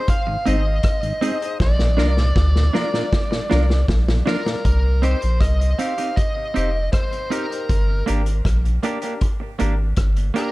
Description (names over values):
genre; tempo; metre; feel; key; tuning
roots reggae; 79 BPM; 4/4; straight; C minor; A4 = 439 Hz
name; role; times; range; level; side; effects
bluesy overdriven lead guitar; melody; 0.0-10.5 s; Bb4 to F5; -26 LUFS; equal; distortion, tape echo
bright upright piano; stabs; 0.0-10.5 s; D4 to D5; -31 LUFS; left 5 dB; none
vintage drum kit; drums; 0.1-10.5 s; hi-hat, kick drum, rim click, snare drum; -22 LUFS; equal; none
mellow tonewheel organ; accompaniment; 0.3-4.6 s; Ab2 to Eb4; -28 LUFS; left 1 dB; slow rotary speaker
semi-hollow electric guitar; accompaniment; 0.3-10.5 s; Bb3 to Bb4; -28 LUFS; right 5 dB; tube saturation, tape echo
soft dub sub bass; bass; 0.5-10.3 s; F1 to D2; -18 LUFS; equal; none
room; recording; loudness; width
light reverb, small room ambience; dark, warm production; -17 LUFS; side -19 dB against mid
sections
0.0-4.6 A section; 4.6-10.5 B section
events
drum fill 1.6-4.6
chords
0.0 Ab; 1.6 Bb; 4.6 Cm; 7.7 Gm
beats
0.09 0.85 | 1.61 2.37 3.13 3.89 | 4.65 5.41 6.17 6.93 | 7.69 8.45 9.21 9.97